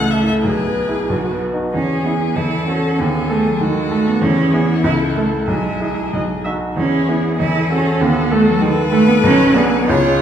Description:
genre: quick classical-period movement for piano quartet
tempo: 96 BPM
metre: 2/4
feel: rubato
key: E major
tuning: A4 = 436 Hz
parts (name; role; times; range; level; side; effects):
- clear violin; melody; 0.0-10.2 s; E4 to F#5; -23 LUFS; left 6 dB; none
- rich cello; second line; 0.0-10.2 s; F#3 to A4; -18 LUFS; right 2 dB; none
- bright baby grand piano; accompaniment; 0.0-10.2 s; B1 to A4; -18 LUFS; equal; none
- rich viola; accompaniment; 0.0-10.2 s; F#4 to E5; -27 LUFS; right 1 dB; none
room: wet recital hall reverb, RT60 1.3 s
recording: heard from further back in the room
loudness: -14 LUFS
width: side -9 dB against mid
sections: 0.0-1.7 A section; 1.7-10.2 B section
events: none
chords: 0.4 E/B; 1.1 B; 1.7 E; 2.4 F#m7/E; 3.0 F#m69/D#; 4.2 E; 4.8 A/C#; 5.5 E/B; 6.1 B; 6.8 E; 7.4 F#m7/E; 8.0 B7/D#; 9.2 G#dim/B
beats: | 0.44 1.09 | 1.74 2.36 | 2.99 3.61 | 4.22 4.85 | 5.49 6.13 | 6.77 7.39 | 8.01 8.62 | 9.23 9.89

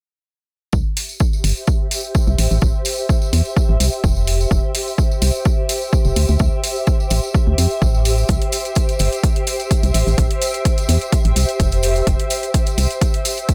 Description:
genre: piano house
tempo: 127 BPM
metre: 4/4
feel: swing 53% on 16ths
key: C major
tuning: A4 = 438 Hz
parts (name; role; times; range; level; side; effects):
- organ-like FM bass; bass; 0.7-12.9 s; F1 to F2; -19 LUFS; equal; tube saturation, sidechain pumping
- electronic kick drum; drums; 0.7-13.5 s; none; -19 LUFS; equal; overdrive
- tambourine; percussion; 0.7-13.5 s; none; -31 LUFS; equal; none
- granular cloud pad; texture; 1.4-13.5 s; G4 to E5; -26 LUFS; equal; built-in reverb, sidechain pumping
- electronic hi-hat and shaker; drums; 1.0-13.5 s; none; -28 LUFS; equal; overdrive
room: little or no reverb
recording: none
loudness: -18 LUFS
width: mono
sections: 0.7-13.5 A section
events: none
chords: 0.7 C; 2.4 Am7; 4.3 F5; 6.2 D7sus2; 8.3 C; 9.9 Am7; 11.8 F5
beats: | 0.73 1.20 1.68 2.15 | 2.62 3.09 3.56 4.04 | 4.51 4.98 5.46 5.93 | 6.40 6.87 7.34 7.82 | 8.29 8.76 9.23 9.71 | 10.18 10.65 11.12 11.60 | 12.07 12.54 13.01 13.49

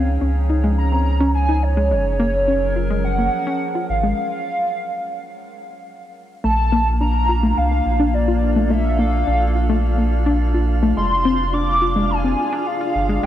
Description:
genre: IDM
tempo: 106 BPM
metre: 4/4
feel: straight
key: unclear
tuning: A4 = 441 Hz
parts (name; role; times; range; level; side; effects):
- warbly nostalgic lead; melody; 0.0-13.3 s; Db5 to D6; -22 LUFS; right 1 dB; ensemble chorus, digital delay
- warbly tape-like pad; sustained chords; 0.0-13.3 s; C3 to D5; -26 LUFS; equal; chorus, built-in reverb, vintage 12-bit sampler grit
- warm sub bass; bass; 0.0-13.3 s; F1 to Db2; -19 LUFS; equal; none
- warbly dusty pluck; arpeggios; 0.2-13.3 s; Ab3 to F4; -23 LUFS; left 2 dB; chorus, tape echo
- flickering grainy texture; texture; 6.9-13.3 s; F4 to F5; -32 LUFS; equal; built-in reverb
room: light reverb, digital ambience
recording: none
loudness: -16 LUFS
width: side -12 dB against mid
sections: 0.0-6.4 A section; 6.4-13.3 B section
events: break 4.2-6.4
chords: 0.0 Dbadd9; 1.9 Gbmaj9; 6.4 Bbmaj7; 11.0 Fm6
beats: 0.21 0.78 1.35 | 1.91 2.48 3.04 3.61 | 4.18 4.74 5.31 5.88 | 6.44 7.01 7.57 8.14 | 8.71 9.27 9.84 10.40 | 10.97 11.54 12.10 12.67 | 13.23

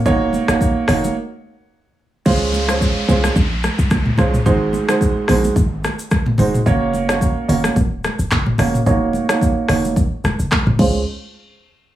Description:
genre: afrobeats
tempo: 109 BPM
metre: 4/4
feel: swing 55% on 16ths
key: Db major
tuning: A4 = 440 Hz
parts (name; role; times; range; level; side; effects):
- clear concert grand piano; accompaniment; 0.1-11.0 s; Ab3 to Db5; -18 LUFS; right 3 dB; low-pass filter
- warm 808-style bass; bass; 0.1-11.0 s; Eb1 to Db2; -21 LUFS; equal; none
- afro-pop drum kit; drums; 0.1-10.9 s; crash cymbal, handclaps, hi-hat, kick drum, rim click, shaker, toms; -18 LUFS; equal; none
- congas; percussion; 0.1-11.0 s; none; -24 LUFS; equal; none
- downlifter; sound effects; 2.3-6.7 s; none; -28 LUFS; left 1 dB; none
room: light reverb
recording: studio reverb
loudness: -15 LUFS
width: side -13 dB against mid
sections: 0.0-2.3 A section; 2.3-11.1 B section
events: break 1.2-2.3; filter sweep on grand piano 2.3-11.1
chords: 0.0 Ebm7; 2.3 Dbmaj7; 4.5 Ab7; 6.7 Ebm7; 10.8 Dbmaj7; 11.1 N.C.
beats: | 0.06 0.61 1.16 1.71 | 2.26 2.81 3.36 3.91 | 4.46 5.01 5.56 6.11 | 6.66 7.21 7.76 8.31 | 8.86 9.41 9.96 10.52

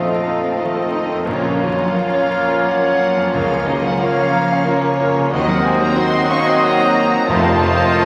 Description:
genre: classical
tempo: 90 BPM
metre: 3/4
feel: rubato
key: Bb minor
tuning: A4 = 441 Hz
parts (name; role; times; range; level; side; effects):
- clear grand piano; melody; 0.0-8.1 s; Bb1 to C6; -24 LUFS; equal; none
- dark studio violin section; melody; 0.0-8.1 s; Db5 to Db6; -27 LUFS; equal; none
- mellow hollow concert flute; second line; 0.0-8.1 s; F4 to F5; -28 LUFS; equal; none
- rich studio violin section; second line; 0.0-8.1 s; A3 to Gb4; -24 LUFS; equal; none
- dark chamber viola section; accompaniment; 0.0-8.1 s; Eb3 to Bb3; -31 LUFS; equal; none
- clear trombone section; sustained chords; 0.0-8.1 s; C3 to Bb3; -30 LUFS; equal; none
- warm French horn section; sustained chords; 0.0-8.1 s; C4 to C5; -26 LUFS; equal; none
- mellow trumpet section; stabs; 0.0-8.1 s; Db5 to Eb5; -23 LUFS; equal; none
- rich symphonic cello section; bass; 0.0-8.1 s; Db3 to Db4; -27 LUFS; equal; none
- timpani; percussion; 0.0-2.3, 7.3-8.1 s; F2 to Bb2; -31 LUFS; equal; none
- warm chamber double bass section; bass; 1.3-7.8 s; Bb1 to F2; -31 LUFS; equal; none
- warm tuba; bass; 1.3-7.8 s; F1 to Eb2; -33 LUFS; equal; none
room: wet concert hall reverb, RT60 1.9 s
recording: vinyl crackle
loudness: -16 LUFS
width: mono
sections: 0.0-8.1 A section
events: none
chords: 0.0 F7/Bb; 1.3 Bbm; 3.3 Bbm/Db; 5.3 Cdim/Eb; 7.3 F7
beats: 0.61 | 1.29 1.97 2.65 | 3.34 4.00 4.67 | 5.32 5.97 6.63 | 7.29 7.96

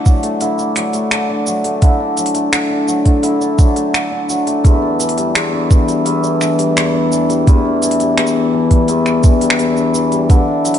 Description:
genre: folktronica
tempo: 85 BPM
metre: 4/4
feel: straight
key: unclear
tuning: A4 = 437 Hz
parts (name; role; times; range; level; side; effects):
- cimbalom; arpeggios; 0.0-10.8 s; E2 to E4; -14 LUFS; left 1 dB; digital delay
- electronic kick drum; drums; 0.1-10.4 s; none; -10 LUFS; right 1 dB; none
- organic electronic drum kit; drums; 0.1-10.8 s; finger snaps, hi-hat, shaker; -20 LUFS; right 1 dB; none
room: light reverb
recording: nothing above 10.8 kHz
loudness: -12 LUFS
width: side -9 dB against mid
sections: 0.0-10.8 A section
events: none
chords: 0.0 Dadd9; 4.7 Em7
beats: 0.42 1.12 | 1.83 2.53 3.24 3.94 | 4.65 5.36 6.06 6.77 | 7.47 8.18 8.89 9.59 | 10.30

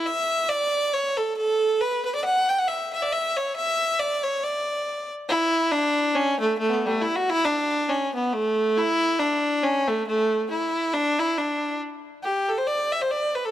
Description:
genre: celtic folk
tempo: 138 BPM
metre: 2/4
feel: swing 56% on 8ths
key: D major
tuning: A4 = 441 Hz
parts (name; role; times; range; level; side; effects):
- rich fiddle; solo; 0.0-13.5 s; G3 to G5; -22 LUFS; equal; none
room: moderate plate reverb, RT60 2.9 s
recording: none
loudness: -22 LUFS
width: side -12 dB against mid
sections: 0.0-5.3 A section; 5.3-12.2 A section; 12.2-13.5 B section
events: none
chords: none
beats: | 0.06 0.49 | 0.93 1.36 | 1.80 2.24 | 2.67 3.11 | 3.54 3.98 | 4.42 4.85 | 5.29 5.72 | 6.16 6.59 | 7.02 7.46 | 7.89 8.32 | 8.76 9.19 | 9.62 10.06 | 10.49 10.93 | 11.36 11.79 | 12.23 12.66 | 13.10

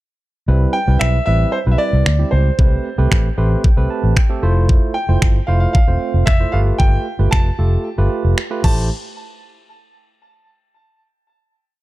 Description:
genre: dance-pop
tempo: 114 BPM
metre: 4/4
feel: straight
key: unclear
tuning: A4 = 439 Hz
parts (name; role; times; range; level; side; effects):
- barky tine electric piano; accompaniment; 0.5-8.9 s; G3 to C6; -23 LUFS; moving between right 1 dB and right 7 dB; overdrive, auto-pan, sidechain pumping
- vintage muted fingered electric bass; bass; 0.5-8.9 s; E1 to D2; -15 LUFS; equal; sidechain pumping
- clear concert grand piano; melody; 0.7-8.9 s; C5 to A5; -23 LUFS; equal; tape echo
- pop drum kit; drums; 1.0-8.8 s; crash cymbal, finger snaps, kick drum; -15 LUFS; equal; none
room: little or no reverb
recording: dark, warm production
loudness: -13 LUFS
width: side -17 dB against mid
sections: 0.5-8.9 verse; 8.9-11.0 final hit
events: tine electric piano fill 3.1-4.7; kick muted 7.8-8.9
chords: 0.5 Cmaj7; 2.6 Am9; 4.4 Fmaj7; 6.5 G9; 8.6 Am7; 8.9 N.C.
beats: | 0.48 1.01 1.53 2.06 | 2.59 3.11 3.64 4.17 | 4.69 5.22 5.75 6.27 | 6.80 7.32 7.85 8.38

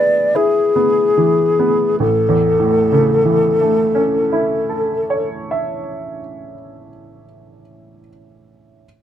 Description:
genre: classical, romantic duo for flute and grand piano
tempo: 26 BPM (dotted quarters)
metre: 6/8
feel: rubato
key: A major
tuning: A4 = 441 Hz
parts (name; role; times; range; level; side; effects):
- mellow hollow silver concert flute; melody; 0.0-5.3 s; G#4 to D5; -14 LUFS; left 3 dB; none
- bright baby grand piano; accompaniment; 0.0-8.9 s; A1 to E5; -18 LUFS; right 4 dB; none
room: little or no reverb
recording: close, detailed microphones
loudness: -13 LUFS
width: side -10 dB against mid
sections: 0.0-2.0 A section; 2.0-6.6 B section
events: slowing down 0.0-2.0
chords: 0.0 E/A; 2.0 A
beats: | 1.99 4.27

